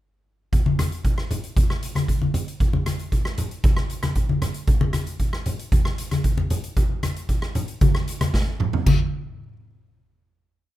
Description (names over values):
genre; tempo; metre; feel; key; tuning
calypso; 115 BPM; 4/4; straight; none; none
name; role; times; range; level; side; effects
street-band drum kit; drums; 0.5-9.0 s; crash cymbal, hi-hat, kick drum, rim click, snare drum, toms; -22 LUFS; right 1 dB; none
congas; percussion; 0.7-9.1 s; none; -24 LUFS; left 2 dB; none
room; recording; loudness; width
light reverb; minimal, uncompressed stereo recording; -20 LUFS; side -14 dB against mid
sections
0.5-8.9 verse; 8.9-10.8 final hit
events
drum fill 8.3-8.9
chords
none